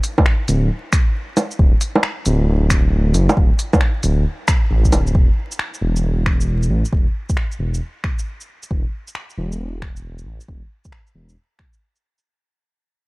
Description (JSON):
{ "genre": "future garage", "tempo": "135 BPM", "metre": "4/4", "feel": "swing 66% on 16ths", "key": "unclear", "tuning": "A4 = 440 Hz", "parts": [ { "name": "organic electronic drum kit", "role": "drums", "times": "0.0-12.2 s", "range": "bongos, finger snaps, hi-hat, shaker", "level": "-22 LUFS", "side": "right 1 dB", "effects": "none" }, { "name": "electronic kick drum", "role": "drums", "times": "0.2-11.7 s", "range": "none", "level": "-16 LUFS", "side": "equal", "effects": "none" }, { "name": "dark detuned saw bass", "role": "bass", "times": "0.5-11.4 s", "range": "D1 to A1", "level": "-18 LUFS", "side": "equal", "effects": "tube saturation, sidechain pumping" } ], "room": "digital ambience", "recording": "dark, warm production, vinyl crackle", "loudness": "-16 LUFS", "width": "side -24 dB against mid", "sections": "0.0-5.1 A section; 5.1-12.3 B section", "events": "fade-out 5.1-12.3", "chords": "none" }